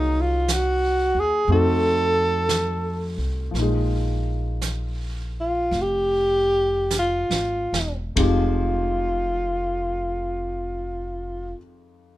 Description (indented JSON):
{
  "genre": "jazz",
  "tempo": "45-62 BPM",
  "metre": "4/4",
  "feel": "swing 67% on 8ths",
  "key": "F minor from 3.5 s",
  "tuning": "A4 = 440 Hz",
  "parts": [
    { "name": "clear alto saxophone", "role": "melody", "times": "0.0-11.6 s", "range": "Eb4 to A4", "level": "-22 LUFS", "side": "equal", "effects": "none" },
    { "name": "warm baby grand piano", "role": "accompaniment", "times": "0.0-12.2 s", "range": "F2 to Ab4", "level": "-28 LUFS", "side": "left 2 dB", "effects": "none" },
    { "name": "upright bass", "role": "bass", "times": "0.0-11.5 s", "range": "E1 to F2", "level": "-26 LUFS", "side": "equal", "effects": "none" },
    { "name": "vintage brush drum kit", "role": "drums", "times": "0.5-8.6 s", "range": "brushed snare drum, hi-hat, kick drum, ride cymbal, snare drum", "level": "-29 LUFS", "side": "right 3 dB", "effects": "none" }
  ],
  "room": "light reverb",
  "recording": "minimal, uncompressed stereo recording",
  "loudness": "-20 LUFS",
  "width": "side -15 dB against mid",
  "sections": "0.0-3.5 A section; 3.5-8.2 B section; 8.2-12.2 C section",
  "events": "slowing down 0.0-8.2; drum fill 6.9-8.2",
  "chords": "0.0 Cm7b5; 1.5 F7b9; 3.5 Bb5; 8.2 Fm9"
}